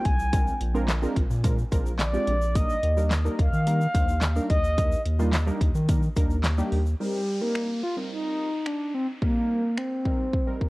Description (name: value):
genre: dance-pop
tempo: 108 BPM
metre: 4/4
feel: straight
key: Eb major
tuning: A4 = 440 Hz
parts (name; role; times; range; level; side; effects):
- mellow horn-like synth lead; melody; 0.0-10.7 s; G3 to Ab5; -28 LUFS; equal; chorus, ping-pong delay
- warm analog keys; accompaniment; 0.0-10.7 s; G3 to C5; -32 LUFS; right 1 dB; chorus, sidechain pumping
- impact and downlifter; sound effects; 0.0-0.3, 7.0-10.7 s; none; -43 LUFS; equal; none
- round analog bass; bass; 0.1-6.9 s; Bb1 to Eb3; -25 LUFS; equal; sidechain pumping
- pop drum kit; drums; 0.1-10.7 s; finger snaps, handclaps, hi-hat, kick drum, snare drum; -25 LUFS; equal; none
- tube shaker; percussion; 0.2-7.0 s; none; -50 LUFS; left 6 dB; none
room: little or no reverb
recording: worn, warbling old tape, cassette tape, warbly pitch drift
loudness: -22 LUFS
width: side -21 dB against mid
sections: 0.0-7.0 A section; 7.0-10.7 B section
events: impact 0.0-0.3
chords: 0.3 Bb9; 2.6 Ebmaj7; 7.0 Eb6